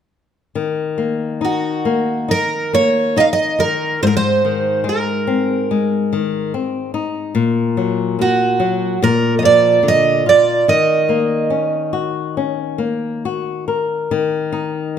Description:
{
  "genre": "fado-style ballad",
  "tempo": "71 BPM",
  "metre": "4/4",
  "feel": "rubato",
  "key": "Eb dorian",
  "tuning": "A4 = 440 Hz",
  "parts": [
    { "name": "flamenco guitar", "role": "accompaniment", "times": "0.6-15.0 s", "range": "Ab2 to Bb4", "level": "-18 LUFS", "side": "left 6 dB", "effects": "none" },
    { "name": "picked twelve-string acoustic guitar", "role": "melody", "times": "1.4-13.2 s", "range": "Gb4 to F5", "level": "-15 LUFS", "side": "right 5 dB", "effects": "none" }
  ],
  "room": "moderate recital hall reverb, RT60 1.4 s",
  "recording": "none",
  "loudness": "-15 LUFS",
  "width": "side -8 dB against mid",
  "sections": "0.6-14.1 A section",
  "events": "none",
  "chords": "0.6 Ebm; 4.0 Abadd9; 7.3 Gb/Bb; 9.0 Bb; 10.7 Ebm7; 14.1 N.C."
}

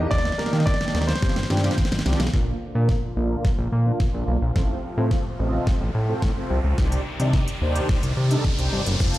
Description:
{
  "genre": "dance-pop",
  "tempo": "108 BPM",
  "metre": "4/4",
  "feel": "straight",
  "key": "C dorian",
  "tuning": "A4 = 439 Hz",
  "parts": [
    { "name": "clear concert grand piano", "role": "melody", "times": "0.0-2.0 s", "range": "Bb4 to Eb5", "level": "-29 LUFS", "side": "equal", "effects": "none" },
    { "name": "mellow synth brass", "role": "accompaniment", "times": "0.0-9.2 s", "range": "Bb3 to Eb5", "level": "-29 LUFS", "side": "right 1 dB", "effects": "chorus, sidechain pumping, low-pass filter" },
    { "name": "fat analog bass", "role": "bass", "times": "0.0-9.2 s", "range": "F1 to Eb3", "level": "-22 LUFS", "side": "equal", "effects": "sidechain pumping" },
    { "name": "pop drum kit", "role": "drums", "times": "0.1-9.2 s", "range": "hi-hat, kick drum, shaker, snare drum", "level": "-23 LUFS", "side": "equal", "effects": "none" },
    { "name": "filtered supersaw swell", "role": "sustained chords", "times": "2.3-9.2 s", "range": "C3 to D5", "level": "-34 LUFS", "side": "left 1 dB", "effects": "sidechain pumping, low-pass filter" },
    { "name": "riser", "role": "sound effects", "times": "4.3-9.2 s", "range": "none", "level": "-34 LUFS", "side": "equal", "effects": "none" }
  ],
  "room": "little or no reverb",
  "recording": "played on a big sound system in a bare room, large studio reverb",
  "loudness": "-20 LUFS",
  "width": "side -16 dB against mid",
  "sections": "0.0-2.3 A section; 2.3-9.2 B section",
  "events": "drum fill 0.1-2.3, 2.3-9.2; build-up 2.3-9.2; filter sweep 2.3-9.2; riser 4.3-9.2",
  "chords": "0.0 Ebmaj7; 1.2 G7sus4; 2.3 Bb; 4.6 F/A; 6.8 Cmadd9"
}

